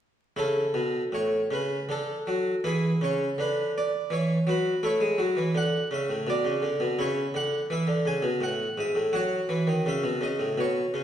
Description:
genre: classical, baroque-style suite movement for harpsichord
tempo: 83 BPM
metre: 3/4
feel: rubato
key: A major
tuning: A4 = 440 Hz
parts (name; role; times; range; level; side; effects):
- harpsichord; solo; 0.4-11.0 s; G#2 to G#5; -24 LUFS; equal; none
room: wet recital hall reverb, RT60 1.5 s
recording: heard from further back in the room, vinyl crackle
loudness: -24 LUFS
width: side -10 dB against mid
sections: 0.4-11.0 A section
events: none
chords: 0.4 A; 1.9 D; 2.6 E13/C#; 4.8 A; 6.3 Bmadd9; 7.0 A/C#; 9.1 F#m

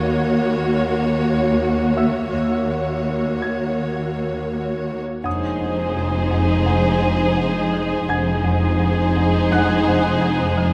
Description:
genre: cinematic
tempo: 84 BPM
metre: 4/4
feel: straight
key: F phrygian from 5.3 s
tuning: A4 = 440 Hz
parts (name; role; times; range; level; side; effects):
- rich symphonic violin section; melody; 0.0-10.7 s; C5 to Db5; -29 LUFS; equal; none
- warm symphonic viola section; accompaniment; 0.0-10.7 s; Bb3 to Gb4; -26 LUFS; equal; none
- rich symphonic cello section; bass; 0.0-10.7 s; Eb2 to F2; -26 LUFS; equal; none
- rich symphonic double bass section; bass; 0.0-10.7 s; F1 to Eb2; -28 LUFS; equal; none
- bright grand piano; texture; 0.0-10.7 s; Fb5 to Ab6; -34 LUFS; equal; none
- clear symphonic violin section; second line; 5.2-10.7 s; Ab4; -27 LUFS; equal; none
- folk marimba with hard mallets; riff; 5.2-10.7 s; F2 to F3; -26 LUFS; equal; none
- mellow French horn section; sustained chords; 5.3-10.7 s; Ab3 to Eb4; -27 LUFS; equal; none
room: wet huge ambient reverb, RT60 8.0 s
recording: in a vast, echoing space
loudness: -20 LUFS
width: mono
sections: 0.0-5.3 A section; 5.3-10.7 B section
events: none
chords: 0.0 Gb/Eb; 5.3 Fm7

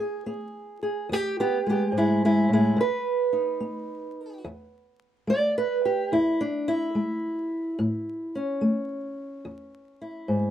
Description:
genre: acoustic country blues, solo or duo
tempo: 72 BPM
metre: 4/4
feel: swing 67% on 8ths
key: E major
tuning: A4 = 440 Hz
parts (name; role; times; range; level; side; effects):
- fingerpicked old ladder-braced acoustic guitar; solo; 0.0-10.5 s; E2 to D5; -24 LUFS; right 1 dB; none
room: moderate small room reverb, RT60 0.5 s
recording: vinyl crackle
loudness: -23 LUFS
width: side -10 dB against mid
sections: 0.0-4.4 A section; 4.4-10.5 B section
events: steel-string acoustic guitar solo 4.4-10.5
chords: 0.0 E; 2.8 B; 4.4 E; 7.8 A

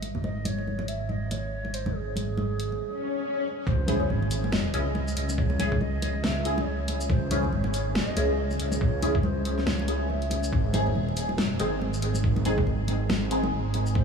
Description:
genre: deep dubstep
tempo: 140 BPM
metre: 4/4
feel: swing 58% on 16ths, half-time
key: C# harmonic minor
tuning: A4 = 442 Hz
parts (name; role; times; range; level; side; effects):
- breathy mellow low ney; melody; 0.0-10.4, 14.0 s; G#4 to E5; -36 LUFS; right 1 dB; dub echo
- dark detuned saw bass; bass; 0.0-14.0 s; D#1 to C#2; -28 LUFS; right 1 dB; none
- dubstep drum kit; drums; 0.0-13.9 s; hi-hat, shaker, snare drum; -33 LUFS; left 1 dB; studio reverb
- congas; percussion; 0.0-14.0 s; none; -33 LUFS; equal; dub echo
- swell and impact; sound effects; 2.9-5.4 s; none; -34 LUFS; left 2 dB; none
- electronic kick drum; drums; 3.7-14.0 s; none; -28 LUFS; equal; overdrive, studio reverb
- filtered dub chord stab; stabs; 3.9-13.5 s; B#3 to G#4; -30 LUFS; left 1 dB; phaser, ensemble chorus, dub echo
room: moderate huge ambient reverb, RT60 8.2 s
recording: dreamy mix soaked in reverb, small room ambience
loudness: -24 LUFS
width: side -6 dB against mid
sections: 0.0-3.7 A section; 3.7-14.0 B section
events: swell 2.9-3.7; drop 3.7-14.0; impact 3.7-5.4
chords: 0.0 N.C.; 3.7 C#m; 10.5 G#

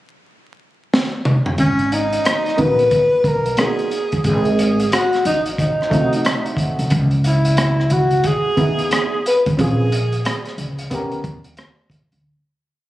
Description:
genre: hip hop, jazz-hop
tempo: 90 BPM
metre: 4/4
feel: swing 62% on 16ths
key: unclear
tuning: A4 = 440 Hz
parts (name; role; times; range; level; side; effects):
- crunchy breakbeat drum kit; drums; 0.9-12.2 s; hi-hat, kick drum, rim click, snare drum, toms; -21 LUFS; equal; none
- breathy alto saxophone; melody; 1.6-10.6 s; C#4 to B4; -18 LUFS; equal; tape echo
- upright bass; bass; 1.6-12.2 s; G1 to D#2; -19 LUFS; equal; none
- dark upright piano; accompaniment; 2.6-11.3 s; A3 to A#4; -23 LUFS; equal; none
room: small room ambience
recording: recorded on a phone in the room, club reverb, vinyl crackle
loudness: -15 LUFS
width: side -15 dB against mid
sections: 0.0-1.6 pickup bar; 1.6-12.2 A section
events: drum fill 0.9-1.6; fade-out 9.6-12.2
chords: 0.0 N.C.; 1.6 G#m9; 4.2 G#7b9; 6.9 C#m9; 9.6 A#m7; 10.9 D#7b13

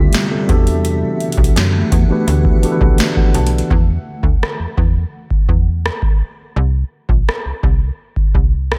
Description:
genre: contemporary R&B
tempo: 84 BPM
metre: 4/4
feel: straight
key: E minor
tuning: A4 = 443 Hz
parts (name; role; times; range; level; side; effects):
- mellow tine electric piano; accompaniment; 0.0-3.7 s; D3 to A5; -22 LUFS; equal; none
- granular cloud pad; sustained chords; 0.0-3.7 s; C3 to F#5; -25 LUFS; equal; built-in reverb, lush chorus, sidechain pumping
- slap-like FM bass; bass; 0.0-8.8 s; A#1 to F#2; -18 LUFS; equal; none
- booming analog drum machine; drums; 0.1-8.8 s; hi-hat, kick drum, rim click, snare drum; -17 LUFS; equal; none
room: light reverb, digital ambience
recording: none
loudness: -16 LUFS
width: mono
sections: 0.0-3.7 A section; 3.7-8.8 B section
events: tine electric piano fill 2.6-3.7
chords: 0.5 Em11; 3.7 N.C.

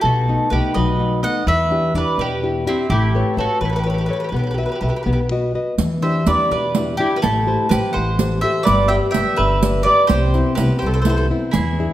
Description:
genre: italian folk, Italian serenade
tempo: 83 BPM (dotted quarters)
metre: 6/8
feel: straight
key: E minor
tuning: A4 = 436 Hz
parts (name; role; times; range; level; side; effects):
- mandolin; melody; 0.0-11.9 s; E4 to G5; -21 LUFS; right 1 dB; none
- mandolin; second line; 0.0-11.9 s; C4 to E5; -25 LUFS; right 3 dB; none
- nylon-string guitar; accompaniment; 0.0-11.9 s; B2 to E5; -22 LUFS; left 3 dB; none
- upright bass; bass; 0.0-11.9 s; G1 to E2; -21 LUFS; equal; none
- riq; percussion; 5.8-11.8 s; none; -23 LUFS; right 4 dB; none
room: wet recital hall reverb, RT60 1.7 s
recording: none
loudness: -16 LUFS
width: side -13 dB against mid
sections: 0.0-11.9 A section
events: none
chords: 0.0 B7; 1.5 Em7; 2.9 Aadd9; 4.3 Bsus4; 5.1 B; 5.8 Em7; 7.2 Am7; 8.7 G; 10.1 Cmaj7

